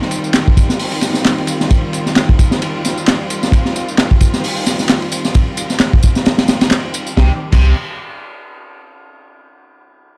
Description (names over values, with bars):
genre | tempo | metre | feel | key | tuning
breakbeat, breaks | 132 BPM | 4/4 | swing 56% on 16ths | C minor | A4 = 440 Hz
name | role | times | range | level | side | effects
clear symphonic string section | sustained chords | 0.0-7.4 s | Eb3 to G4 | -24 LUFS | equal | vintage 12-bit sampler grit, sidechain pumping
crunchy breakbeat drum kit | drums | 0.0-7.6 s | crash cymbal, hi-hat, kick drum, ride cymbal, snare drum | -16 LUFS | equal | none
electronic tambourine and handclaps | drums | 0.1-7.1 s | none | -26 LUFS | equal | none
overdriven electric guitar | riff | 7.2-7.7 s | C3 | -28 LUFS | equal | delay
saturated sub bass | bass | 7.2-7.7 s | C2 | -14 LUFS | equal | none
room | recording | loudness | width
light reverb | dark, warm production | -14 LUFS | mono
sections
0.0-7.2 A section; 7.2-9.0 B section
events
none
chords
0.0 Cm; 7.2 C5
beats
0.35 0.80 1.26 | 1.71 2.17 2.62 3.08 | 3.53 3.98 4.44 4.89 | 5.35 5.80 6.26 6.71 | 7.17 7.62